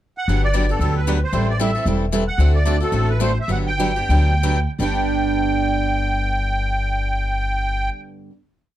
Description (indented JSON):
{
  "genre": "acoustic string swing (jazz manouche)",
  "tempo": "160-228 BPM",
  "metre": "4/4",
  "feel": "swing 56% on 8ths",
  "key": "G major",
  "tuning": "A4 = 440 Hz",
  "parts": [
    { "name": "musette accordion", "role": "melody", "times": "0.2-7.9 s", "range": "A4 to G5", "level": "-23 LUFS", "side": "right 2 dB", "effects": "slapback echo" },
    { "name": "picked steel-string acoustic guitar", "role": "accompaniment", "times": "0.3-8.3 s", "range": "G2 to A4", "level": "-26 LUFS", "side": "right 7 dB", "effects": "none" },
    { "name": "picked swing-style acoustic guitar", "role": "accompaniment", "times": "0.3-8.3 s", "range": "G2 to A4", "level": "-27 LUFS", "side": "left 6 dB", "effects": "none" },
    { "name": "upright bass", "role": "bass", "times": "0.3-7.9 s", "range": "E1 to D2", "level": "-20 LUFS", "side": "left 1 dB", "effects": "none" }
  ],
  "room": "little or no reverb",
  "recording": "close, detailed microphones",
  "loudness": "-17 LUFS",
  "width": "side -13 dB against mid",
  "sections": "0.0-0.3 pickup bar; 0.3-4.8 A section; 4.8-7.8 final chord",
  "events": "slowing down 2.4-4.8",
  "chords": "0.3 Gmaj9; 1.3 Am7; 2.4 D7; 3.5 Gmaj7; 4.8 G"
}